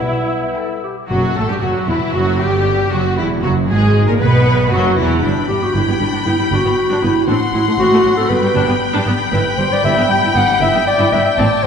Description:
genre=quick classical-period movement for symphony orchestra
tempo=117 BPM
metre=4/4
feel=straight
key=unclear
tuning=A4 = 440 Hz
part: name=mellow clarinet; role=second line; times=0.0-11.7 s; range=D4 to G5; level=-17 LUFS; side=equal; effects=none
part: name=mellow hollow concert flute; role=second line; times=0.0-0.8 s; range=E5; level=-30 LUFS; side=left 4 dB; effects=none
part: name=rich chamber viola section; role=accompaniment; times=0.0-11.7 s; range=E3 to E4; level=-22 LUFS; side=equal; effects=none
part: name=warm bassoon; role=accompaniment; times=0.0-0.8 s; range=B3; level=-25 LUFS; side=left 4 dB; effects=none
part: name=dark French horn section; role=sustained chords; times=0.0-0.8 s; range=G3 to E4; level=-28 LUFS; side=left 1 dB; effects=none
part: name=rich chamber cello section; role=bass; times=0.0-11.7 s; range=E2 to B2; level=-20 LUFS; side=right 1 dB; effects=none
part: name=rich chamber double bass section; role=bass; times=0.0-11.7 s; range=E1 to B1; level=-21 LUFS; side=right 2 dB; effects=none
part: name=rich chamber violin section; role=melody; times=0.6-11.7 s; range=E4 to C6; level=-24 LUFS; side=left 6 dB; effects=none
part: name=rich studio violin section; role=second line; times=0.6-11.7 s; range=E4 to G5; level=-22 LUFS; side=left 1 dB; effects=none
part: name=timpani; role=percussion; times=1.1-4.9 s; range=B2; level=-24 LUFS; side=equal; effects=none
room=wet concert hall reverb, RT60 2.1 s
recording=recorded in a church or concert hall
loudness=-13 LUFS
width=side -7 dB against mid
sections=0.0-1.1 A section; 1.1-11.7 B section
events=none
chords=0.0 Em; 1.1 Emadd9; 3.2 F#9/E; 4.2 B5; 5.2 G; 7.3 F#dim/A; 8.3 G; 9.3 Em/G

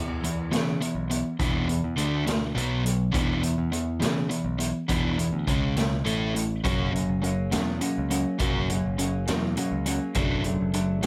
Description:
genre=indie rock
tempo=68 BPM (dotted quarters)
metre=6/8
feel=straight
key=unclear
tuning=A4 = 440 Hz
part: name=crunchy overdriven guitar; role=riff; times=0.0-11.1 s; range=B2 to A4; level=-30 LUFS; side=equal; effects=none
part: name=modern bright picked electric bass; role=bass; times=0.0-11.1 s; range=F#1 to C#3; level=-32 LUFS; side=equal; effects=none
part: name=raw garage drum kit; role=drums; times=0.2-11.1 s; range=hi-hat, kick drum, snare drum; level=-32 LUFS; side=equal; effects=none
part: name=electric guitar through a small old amp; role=riff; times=6.6-11.1 s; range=C#3 to D4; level=-37 LUFS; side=equal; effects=subtle chorus, tape echo
room=light reverb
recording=none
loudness=-26 LUFS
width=mono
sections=0.0-11.1 A section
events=none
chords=0.0 E5; 2.0 D5; 2.6 B5; 3.1 E5; 5.5 C#5; 6.1 A5; 6.6 F#; 10.2 Dmaj7/F#

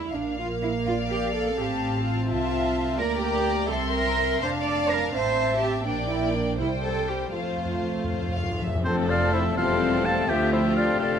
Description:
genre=quick classical-period movement for symphony orchestra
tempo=84 BPM (dotted quarters)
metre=6/8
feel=straight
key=F major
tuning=A4 = 441 Hz
part: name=rich studio violin section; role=second line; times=0.0-11.2 s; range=C4 to F5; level=-32 LUFS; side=left 2 dB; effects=none
part: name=warm chamber double bass section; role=bass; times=0.0-11.2 s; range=E1 to F2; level=-31 LUFS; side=right 2 dB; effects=none
part: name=warm studio cello section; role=bass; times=0.0-11.2 s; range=D2 to D5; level=-28 LUFS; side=right 2 dB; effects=none
part: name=dark studio violin section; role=melody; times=0.2-11.2 s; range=G4 to C6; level=-33 LUFS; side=left 6 dB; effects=none
part: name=rich studio viola section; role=accompaniment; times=0.2-11.2 s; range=D3 to D4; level=-30 LUFS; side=right 1 dB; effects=none
part: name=timpani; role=percussion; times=7.3-8.8 s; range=F2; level=-32 LUFS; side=left 2 dB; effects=none
part: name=bright clarinet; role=second line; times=8.8-11.2 s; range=C4 to A4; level=-31 LUFS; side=left 3 dB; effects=none
part: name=clear oboe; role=second line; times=8.8-11.2 s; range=C5 to A5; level=-28 LUFS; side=equal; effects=none
part: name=silver concert flute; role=second line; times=8.8-11.2 s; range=A4 to F5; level=-29 LUFS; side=left 3 dB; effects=none
part: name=mellow French horn section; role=sustained chords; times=8.8-11.2 s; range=A3 to D4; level=-30 LUFS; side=left 5 dB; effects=none
room=light reverb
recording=none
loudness=-22 LUFS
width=side -8 dB against mid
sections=0.0-8.8 A section; 8.8-11.2 B section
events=timpani fill 7.3-8.8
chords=0.2 Bb; 1.6 F/A; 3.0 Bb/D; 3.7 C; 4.4 F; 5.9 Gm/Bb; 6.6 C5; 7.3 F; 10.3 Dm

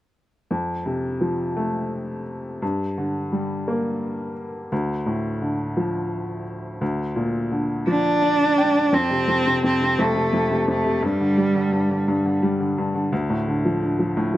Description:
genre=six-eight pop ballad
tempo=57 BPM (dotted quarters)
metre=6/8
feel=straight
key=F major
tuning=A4 = 440 Hz
part: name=clear upright piano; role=accompaniment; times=0.5-14.4 s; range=D2 to G5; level=-22 LUFS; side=left 1 dB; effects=none
part: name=rich cello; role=melody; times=7.9-12.4 s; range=G3 to D4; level=-20 LUFS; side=right 1 dB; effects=none
room=light reverb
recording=recorded outdoors, with no room sound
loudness=-20 LUFS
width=side -14 dB against mid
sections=0.5-8.9 A section; 8.9-14.4 B section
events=upright piano fill 7.9-8.9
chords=0.5 F; 2.6 Gm; 4.7 Dm; 6.8 Bb/D; 8.9 F; 11.0 G5; 13.1 Dm

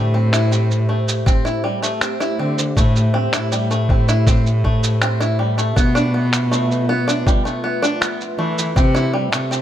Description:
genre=folktronica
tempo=80 BPM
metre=4/4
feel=straight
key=A minor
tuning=A4 = 440 Hz
part: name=warbly tape-like pad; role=sustained chords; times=0.0-9.6 s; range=A3 to E5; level=-26 LUFS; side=right 1 dB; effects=chorus, built-in reverb
part: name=bluegrass banjo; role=arpeggios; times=0.0-9.6 s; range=G3 to E4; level=-22 LUFS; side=equal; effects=digital delay
part: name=warm cello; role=bass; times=0.0-9.6 s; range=A2 to E3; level=-18 LUFS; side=equal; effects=none
part: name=electronic finger snaps and cabasa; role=drums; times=0.3-9.6 s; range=none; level=-23 LUFS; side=right 2 dB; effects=none
part: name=electronic kick drum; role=drums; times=1.3-8.9 s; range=none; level=-17 LUFS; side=equal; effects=none
room=light reverb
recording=none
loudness=-15 LUFS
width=side -11 dB against mid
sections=0.0-9.6 A section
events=none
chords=0.0 Am7; 5.8 G13 (rootless); 8.8 C6

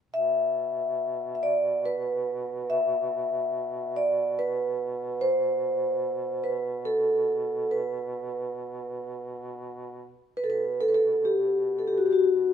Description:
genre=caucasian folk, Caucasian lament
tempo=65-73 BPM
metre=3/4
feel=rubato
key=B phrygian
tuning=A4 = 440 Hz
part: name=vibraphone with soft mallets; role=melody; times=0.1-12.5 s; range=F#4 to E5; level=-25 LUFS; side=equal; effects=none
part: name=warm duduk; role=drone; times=0.1-12.5 s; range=B2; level=-37 LUFS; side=right 1 dB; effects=none
room=moderate stone room reverb, RT60 1.2 s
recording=band playing live in one room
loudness=-24 LUFS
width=side -8 dB against mid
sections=0.0-10.4 A section; 10.4-12.5 B section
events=none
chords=none

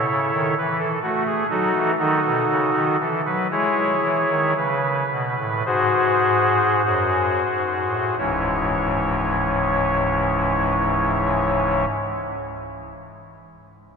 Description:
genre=classical, chorale-style piece for pipe organ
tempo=43-66 BPM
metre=4/4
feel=rubato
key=C# minor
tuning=A4 = 440 Hz
part: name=pipe organ, soft reed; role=solo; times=0.0-11.9 s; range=C#1 to C#5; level=-19 LUFS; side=equal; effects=none
room=wet cathedral reverb, RT60 4.4 s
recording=minimal, uncompressed stereo recording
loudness=-18 LUFS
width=side -5 dB against mid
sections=0.0-8.2 A section; 8.2-13.5 B section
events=slowing down 0.0-8.2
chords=0.0 A; 1.5 D#dim; 3.5 C#m; 5.7 G#7; 8.2 C#m

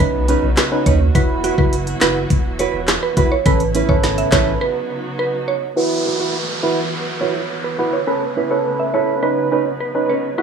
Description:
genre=dancehall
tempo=104 BPM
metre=4/4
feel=straight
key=unclear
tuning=A4 = 438 Hz
part: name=mallet-like synth pluck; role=melody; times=0.0-10.4 s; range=F#4 to E5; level=-22 LUFS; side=right 5 dB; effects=chorus, low-pass filter, tape echo
part: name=percussive organ stab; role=accompaniment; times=0.0-10.4 s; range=C#4 to B4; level=-21 LUFS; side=equal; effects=chorus, low-pass filter
part: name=warm symphonic string section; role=sustained chords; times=0.0-10.4 s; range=B2 to F#4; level=-28 LUFS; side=right 1 dB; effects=sidechain pumping, low-pass filter
part: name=warm sub bass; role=bass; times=0.0-4.6 s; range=E1 to D#2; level=-20 LUFS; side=equal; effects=none
part: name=island pop drum kit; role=drums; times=0.0-4.5 s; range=handclaps, hi-hat, kick drum, rim click, snare drum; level=-18 LUFS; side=equal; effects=none
part: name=nylon-string guitar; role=arpeggios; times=0.3-10.3 s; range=C#4 to B4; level=-24 LUFS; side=right 7 dB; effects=low-pass filter, tape echo
part: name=downlifter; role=sound effects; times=5.8-10.4 s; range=none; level=-26 LUFS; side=right 1 dB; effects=none
room=digital ambience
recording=dry, gritty hardware recording, studio ambience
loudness=-15 LUFS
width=side -6 dB against mid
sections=0.0-5.8 A section; 5.8-10.4 B section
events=break 4.6-5.8; filter sweep 5.8-10.4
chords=0.0 Badd9; 1.1 Esus2; 3.5 Aadd9; 4.6 Badd9; 5.8 Esus2; 8.1 Aadd9; 9.2 Badd9

